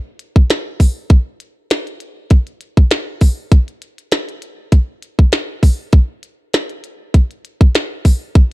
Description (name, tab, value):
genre	blues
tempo	99 BPM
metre	4/4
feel	swing 54% on 16ths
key	none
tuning	none
part	glitchy drum kit	drums	0.2-8.5 s	hi-hat, kick drum, snare drum	-10 LUFS	equal	none
room	digital ambience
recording	dry, close 1970s-style studio recording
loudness	-13 LUFS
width	side -19 dB against mid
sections	0.0-8.5 A section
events	none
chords	none